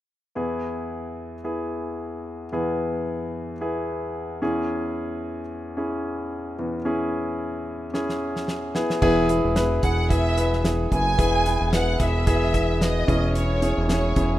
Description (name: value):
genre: piano-driven pop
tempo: 111 BPM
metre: 4/4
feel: swing 56% on 16ths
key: unclear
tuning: A4 = 441 Hz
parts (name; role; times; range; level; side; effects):
- warm concert grand piano; accompaniment; 0.4-14.4 s; E2 to B4; -24 LUFS; left 1 dB; none
- damped 70s drum kit; drums; 7.9-14.3 s; crash cymbal, hi-hat, kick drum, snare drum; -26 LUFS; equal; none
- fat analog bass; bass; 9.0-14.4 s; E1 to F#1; -23 LUFS; equal; none
- warm studio violin section; melody; 9.8-14.4 s; C#5 to G#5; -26 LUFS; right 1 dB; none
room: light reverb, small room ambience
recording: rough home demo mix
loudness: -22 LUFS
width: side -14 dB against mid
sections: 0.4-9.0 A section; 9.0-14.4 B section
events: drum fill 7.9-9.0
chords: 0.4 E; 4.4 C#m/E; 8.8 E; 13.1 C#m/E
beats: | 0.36 0.90 1.44 1.99 | 2.53 3.07 3.61 4.15 | 4.69 5.23 5.78 6.32 | 6.86 7.40 7.94 8.48 | 9.02 9.56 10.10 10.65 | 11.19 11.73 12.27 12.81 | 13.35 13.89